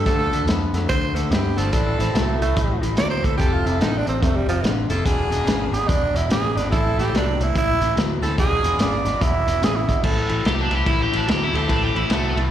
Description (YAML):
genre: electric blues shuffle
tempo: 144 BPM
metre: 4/4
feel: swing 63% on 8ths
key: A minor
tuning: A4 = 440 Hz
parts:
  - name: growling tenor saxophone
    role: second line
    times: 0.0-10.0 s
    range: F3 to D5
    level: -24 LUFS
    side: right 5 dB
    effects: plate reverb, slapback echo
  - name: electric guitar through a small old amp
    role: riff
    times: 0.0-12.5 s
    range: E2 to B3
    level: -26 LUFS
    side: left 4 dB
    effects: slapback echo
  - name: vintage muted fingered electric bass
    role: bass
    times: 0.0-12.5 s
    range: E1 to G2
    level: -24 LUFS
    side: equal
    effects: none
  - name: edgy saxophone section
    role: stabs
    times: 0.1-12.0 s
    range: C4 to A4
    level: -27 LUFS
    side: equal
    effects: plate reverb, slapback echo
  - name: vintage drum kit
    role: drums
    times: 0.1-12.4 s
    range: crash cymbal, hi-hat, kick drum, ride cymbal, snare drum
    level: -24 LUFS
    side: equal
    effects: none
  - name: raw garage guitar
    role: melody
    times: 10.5-12.4 s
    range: A3 to G4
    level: -23 LUFS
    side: equal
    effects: overdrive, plate reverb
room: light reverb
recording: live gig heard through the venue's PA, recital hall reverb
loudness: -18 LUFS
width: side -10 dB against mid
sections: 0.0-10.0 A section; 10.0-12.5 A section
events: tenor saxophone solo 0.0-10.0; overdriven electric guitar solo 10.0-12.5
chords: 0.0 Dm; 1.7 Am; 3.4 Fmaj7; 5.1 E7b9; 6.7 Am; 8.4 E7b9; 10.0 Am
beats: | 0.07 0.48 0.90 1.32 | 1.73 2.15 2.56 2.98 | 3.40 3.81 4.23 4.64 | 5.06 5.48 5.89 6.31 | 6.72 7.14 7.55 7.97 | 8.38 8.80 9.21 9.62 | 10.04 10.45 10.87 11.28 | 11.70 12.11